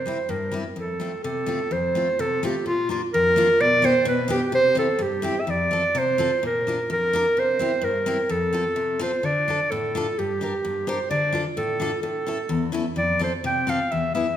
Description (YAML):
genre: alpine folk, alpine dance band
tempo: 128 BPM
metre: 2/4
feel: rubato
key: F major, D minor from 9.2 s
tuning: A4 = 440 Hz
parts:
  - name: warm clarinet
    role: melody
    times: 0.0-14.4 s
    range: F4 to G5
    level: -22 LUFS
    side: right 1 dB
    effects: none
  - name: picked steel-string acoustic guitar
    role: accompaniment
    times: 0.0-14.3 s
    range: E2 to Bb4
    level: -27 LUFS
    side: left 3 dB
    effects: none
room: wet recital hall reverb, RT60 1.5 s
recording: minimal, uncompressed stereo recording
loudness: -21 LUFS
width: side -10 dB against mid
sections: 0.0-1.7 A section; 1.7-9.2 A section; 9.2-14.4 B section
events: none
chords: 0.0 C7; 0.8 F; 2.7 Bb; 3.6 G/B; 4.5 C; 5.5 F; 6.4 Bb; 7.4 C7; 8.3 F; 9.2 Dm; 10.2 Gm; 11.1 Dm; 12.0 A; 13.0 F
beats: 0.29 | 0.76 1.23 | 1.72 2.19 | 2.67 3.13 | 3.60 4.05 | 4.52 4.99 | 5.47 5.95 | 6.43 6.90 | 7.36 7.83 | 8.29 8.76 | 9.23 9.71 | 10.18 10.64 | 11.10 11.56 | 12.02 12.49 | 12.96 13.44 | 13.91